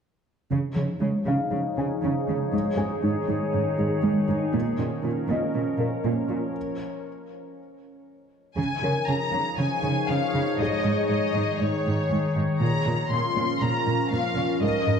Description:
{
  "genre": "cinematic",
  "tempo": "119 BPM",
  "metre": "4/4",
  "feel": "straight",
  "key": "unclear",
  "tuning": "A4 = 440 Hz",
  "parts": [
    { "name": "evolving wavetable pad", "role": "sustained chords", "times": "0.9-15.0 s", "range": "Eb3 to Db5", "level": "-28 LUFS", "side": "left 1 dB", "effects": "chorus, built-in reverb, low-pass filter" },
    { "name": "tight sequenced synth", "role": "arpeggios", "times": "0.5-6.5 s", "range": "Db3 to Bb4", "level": "-29 LUFS", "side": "equal", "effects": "chorus, low-pass filter, ping-pong delay" },
    { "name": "rich symphonic cello section", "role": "bass", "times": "0.5-14.9 s", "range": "Ab2 to Db3", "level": "-27 LUFS", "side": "right 2 dB", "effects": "none" },
    { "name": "warm concert grand piano", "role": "texture", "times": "1.3-15.0 s", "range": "Ab3 to Ab5", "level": "-34 LUFS", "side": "left 2 dB", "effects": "ping-pong delay" },
    { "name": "rich symphonic violin section", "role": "melody", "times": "8.6-15.0 s", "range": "Db5 to C6", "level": "-28 LUFS", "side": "left 3 dB", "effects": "low-pass filter" }
  ],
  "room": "wet recital hall reverb, RT60 1.3 s",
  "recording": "dark, warm production",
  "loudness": "-23 LUFS",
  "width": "side -7 dB against mid",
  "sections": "0.5-8.6 A section; 8.6-15.0 B section",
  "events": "filter sweep 0.5-8.6; break 6.6-8.6",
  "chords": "0.5 Dbadd9; 2.5 Absus4; 4.5 Bbm; 6.6 N.C.; 8.6 Dbadd9; 10.6 Absus4; 12.6 Bbm",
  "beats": "| 0.51 1.01 1.52 2.02 | 2.52 3.03 3.53 4.04 | 4.54 5.05 5.55 6.05 | 6.56 7.06 7.57 8.07 | 8.57 9.08 9.58 10.09 | 10.59 11.10 11.60 12.11 | 12.61 13.11 13.62 14.12 | 14.63"
}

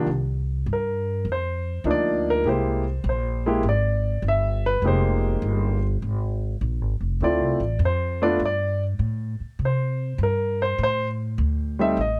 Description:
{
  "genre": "jazz piano trio",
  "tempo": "101 BPM",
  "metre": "4/4",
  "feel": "swing 69% on 8ths",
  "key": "C minor",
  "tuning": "A4 = 441 Hz",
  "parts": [
    { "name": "warm concert grand piano", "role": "melody", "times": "0.0-12.2 s", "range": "F3 to E5", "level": "-26 LUFS", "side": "equal", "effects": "none" },
    { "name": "upright bass", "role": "bass", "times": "0.1-12.2 s", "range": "F1 to C3", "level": "-27 LUFS", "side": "equal", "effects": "none" }
  ],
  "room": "little or no reverb",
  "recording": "close, detailed microphones",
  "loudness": "-24 LUFS",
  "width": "mono",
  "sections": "0.1-12.2 A section",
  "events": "grand piano solo 0.1-12.2",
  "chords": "0.1 Cm11; 2.5 C7b13; 4.8 Fm11; 7.2 Dm9; 8.4 Gsus2; 9.6 Csus2",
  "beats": "| 0.08 0.67 1.27 1.86 | 2.46 3.05 3.64 4.24 | 4.83 5.43 6.02 6.62 | 7.21 7.81 8.40 9.00 | 9.59 10.19 10.78 11.38 | 11.98"
}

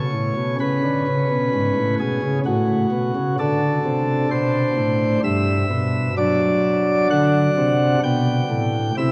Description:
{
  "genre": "classical, chorale-style piece for pipe organ",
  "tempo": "64 BPM",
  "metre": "3/4",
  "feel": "rubato",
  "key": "G major from 3.4 s",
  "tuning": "A4 = 440 Hz",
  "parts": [
    { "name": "chamber organ, principal chorus", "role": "solo", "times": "0.0-9.1 s", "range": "G2 to G5", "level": "-20 LUFS", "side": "equal", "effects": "none" }
  ],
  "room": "wet cathedral reverb, RT60 5.3 s",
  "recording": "dark, warm production",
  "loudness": "-20 LUFS",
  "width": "mono",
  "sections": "0.0-9.1 A section",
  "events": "none",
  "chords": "0.0 F#m (rootless); 0.6 C#5; 2.5 F#m/A; 3.4 D5; 5.2 G; 6.2 D7/F#; 8.0 G/B",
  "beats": "| 0.60 1.52 2.45 | 3.38 4.31 5.23 | 6.17 7.10 8.03 | 8.97"
}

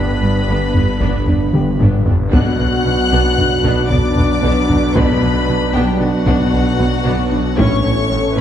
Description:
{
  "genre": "cinematic, hybrid orchestral and electronic film score",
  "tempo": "114 BPM",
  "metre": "5/4",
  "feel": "straight",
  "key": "unclear",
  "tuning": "A4 = 440 Hz",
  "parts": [
    { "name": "warm chamber violin section", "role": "melody", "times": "0.0-8.4 s", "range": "F#5 to F#6", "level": "-23 LUFS", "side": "left 6 dB", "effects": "none" },
    { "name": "rich symphonic violin section", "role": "second line", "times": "0.0-8.4 s", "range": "F#4 to F#5", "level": "-26 LUFS", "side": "left 5 dB", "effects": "none" },
    { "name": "warm symphonic viola section", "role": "accompaniment", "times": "0.0-8.4 s", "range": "F#3 to E4", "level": "-24 LUFS", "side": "left 1 dB", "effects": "none" },
    { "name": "sweeping resonant pad", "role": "sustained chords", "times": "0.0-8.4 s", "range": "E3 to B4", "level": "-24 LUFS", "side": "equal", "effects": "lush chorus" },
    { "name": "warm French horn section", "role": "sustained chords", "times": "0.0-8.4 s", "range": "F#3 to F#4", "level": "-23 LUFS", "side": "left 1 dB", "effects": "none" },
    { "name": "warm trombone section", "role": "sustained chords", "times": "0.0-8.4 s", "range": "E3 to D4", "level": "-26 LUFS", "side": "right 6 dB", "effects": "none" },
    { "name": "harp-like synth pluck", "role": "arpeggios", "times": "0.0-8.4 s", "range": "G3 to B4", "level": "-24 LUFS", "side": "right 1 dB", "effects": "chorus, phaser, tape echo" },
    { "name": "phased detuned saw bass", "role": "bass", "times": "0.0-8.4 s", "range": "G1 to B1", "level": "-21 LUFS", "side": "equal", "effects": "phaser" },
    { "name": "rich symphonic cello section", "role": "bass", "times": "0.0-8.4 s", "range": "G2 to B2", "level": "-23 LUFS", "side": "right 2 dB", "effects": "none" },
    { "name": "rich symphonic double bass section", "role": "bass", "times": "0.0-8.4 s", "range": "G1 to B1", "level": "-22 LUFS", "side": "right 2 dB", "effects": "none" },
    { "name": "taiko ensemble", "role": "drums", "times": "0.7-8.1 s", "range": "none", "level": "-18 LUFS", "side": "left 1 dB", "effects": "none" }
  ],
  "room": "wet concert hall reverb, RT60 1.9 s",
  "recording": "dark, warm production",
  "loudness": "-12 LUFS",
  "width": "side -10 dB against mid",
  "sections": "0.0-8.4 A section",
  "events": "drum fill 1.5-2.3",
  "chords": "0.0 G; 2.3 Bm; 7.6 A",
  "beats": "0.21 0.74 1.27 1.79 | 2.32 2.85 3.37 3.90 4.42 | 4.95 5.48 6.00 6.53 7.06 | 7.58 8.11"
}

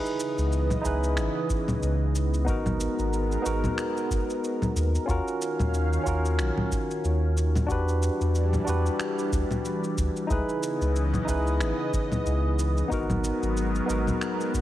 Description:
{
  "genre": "sunset chillout",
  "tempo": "92 BPM",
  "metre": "4/4",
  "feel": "swing 57% on 16ths",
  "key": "C# dorian",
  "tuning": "A4 = 440 Hz",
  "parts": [
    { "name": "barky tine electric piano", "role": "accompaniment", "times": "0.0-14.6 s", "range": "B3 to B4", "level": "-29 LUFS", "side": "equal", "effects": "overdrive, auto-pan, digital delay" },
    { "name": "lush unison pad", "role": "sustained chords", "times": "0.0-14.6 s", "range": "C#3 to E#5", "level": "-32 LUFS", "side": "equal", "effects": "chorus, phaser" },
    { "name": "electronic shaker, congas and finger snaps", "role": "drums", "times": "0.1-14.6 s", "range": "none", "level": "-32 LUFS", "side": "left 1 dB", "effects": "none" },
    { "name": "warm sub bass", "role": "bass", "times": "0.4-14.6 s", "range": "F#1 to E2", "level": "-26 LUFS", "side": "equal", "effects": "none" },
    { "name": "electronic kick drum", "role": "drums", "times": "0.8-14.6 s", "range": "none", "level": "-30 LUFS", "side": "equal", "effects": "none" }
  ],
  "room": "light reverb, digital ambience",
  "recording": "heavily compressed radio sound",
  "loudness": "-24 LUFS",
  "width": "side -14 dB against mid",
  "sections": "0.0-14.6 A section",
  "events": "none",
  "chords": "0.0 C#m9; 2.5 G#m9; 5.1 D#m9; 7.7 Em9; 10.3 C#m9; 12.9 G#m9",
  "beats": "0.52 1.17 1.82 | 2.47 3.13 3.78 4.43 | 5.08 5.73 6.39 7.04 | 7.69 8.34 8.99 9.65 | 10.30 10.95 11.60 12.26 | 12.91 13.56 14.21"
}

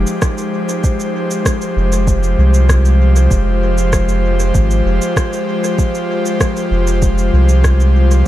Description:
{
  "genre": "ambient dub",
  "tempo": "97 BPM",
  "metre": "4/4",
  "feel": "straight",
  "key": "F minor",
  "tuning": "A4 = 440 Hz",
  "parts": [
    { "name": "airy breathy pad", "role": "sustained chords", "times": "0.0-8.3 s", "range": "F3 to C5", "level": "-17 LUFS", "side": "left 1 dB", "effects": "chorus" },
    { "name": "soft dub sub bass", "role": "bass", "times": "0.0-8.2 s", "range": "F1 to C2", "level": "-12 LUFS", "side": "equal", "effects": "none" },
    { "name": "electronic shaker and rim click", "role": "drums", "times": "0.1-8.2 s", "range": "none", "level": "-23 LUFS", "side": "equal", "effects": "small room ambience, dub echo" },
    { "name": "electronic kick drum", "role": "drums", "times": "0.2-7.8 s", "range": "none", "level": "-16 LUFS", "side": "equal", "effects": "small room ambience" }
  ],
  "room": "little or no reverb",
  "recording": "none",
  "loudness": "-12 LUFS",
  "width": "side -14 dB against mid",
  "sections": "0.0-8.3 A section",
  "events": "none",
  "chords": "0.0 Fm9",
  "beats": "0.22 | 0.84 1.46 2.08 2.69 | 3.31 3.93 4.55 5.17 | 5.79 6.41 7.02 7.64 | 8.26"
}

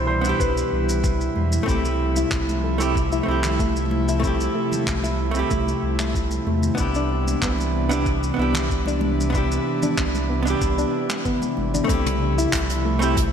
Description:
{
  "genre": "sunset chillout",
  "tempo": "94 BPM",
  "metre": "4/4",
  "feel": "straight",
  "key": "C major",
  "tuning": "A4 = 440 Hz",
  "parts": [
    { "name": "warm concert grand piano", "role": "melody", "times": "0.0-1.3 s", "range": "B4 to C5", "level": "-28 LUFS", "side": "left 2 dB", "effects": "ping-pong delay, shimmer reverb, slapback echo" },
    { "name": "vintage hollow-body jazz guitar", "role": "accompaniment", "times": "0.0-13.2 s", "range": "B2 to G4", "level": "-25 LUFS", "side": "moving between left 4 dB and right 5 dB", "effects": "auto-pan, ping-pong delay, shimmer reverb, slapback echo" },
    { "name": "airy breathy pad", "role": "sustained chords", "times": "0.0-13.3 s", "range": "B2 to E4", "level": "-27 LUFS", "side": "equal", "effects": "chorus, shimmer reverb" },
    { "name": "warm sub bass", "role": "bass", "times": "0.0-13.3 s", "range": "G1 to E2", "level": "-24 LUFS", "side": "equal", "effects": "none" },
    { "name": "jazz brush drum kit", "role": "drums", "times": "0.2-13.3 s", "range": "handclaps, hi-hat, shaker, toms", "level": "-30 LUFS", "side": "equal", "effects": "none" },
    { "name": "electronic kick drum", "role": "drums", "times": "0.4-13.3 s", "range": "none", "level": "-26 LUFS", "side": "equal", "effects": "none" },
    { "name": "congas", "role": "percussion", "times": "1.4-11.9 s", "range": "none", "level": "-33 LUFS", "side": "equal", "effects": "none" },
    { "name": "soft round pluck", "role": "arpeggios", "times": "1.7-13.0 s", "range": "A3 to E4", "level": "-29 LUFS", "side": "left 2 dB", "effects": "chorus, vintage 12-bit sampler grit, ping-pong delay, shimmer reverb, slapback echo" }
  ],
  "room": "moderate scoring stage reverb, RT60 1.8 s, small room ambience",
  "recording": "big arena sound",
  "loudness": "-19 LUFS",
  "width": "side -8 dB against mid",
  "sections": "0.0-11.9 A section; 11.9-13.3 B section",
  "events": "none",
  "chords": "0.0 Cmaj9; 1.7 Fmaj7/C; 6.8 Cmaj9; 11.9 Fmaj7/C",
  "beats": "0.40 1.04 | 1.68 2.32 2.96 3.60 | 4.23 4.87 5.51 6.15 | 6.79 7.42 8.06 8.70 | 9.34 9.98 10.62 11.26 | 11.89 12.53 13.17"
}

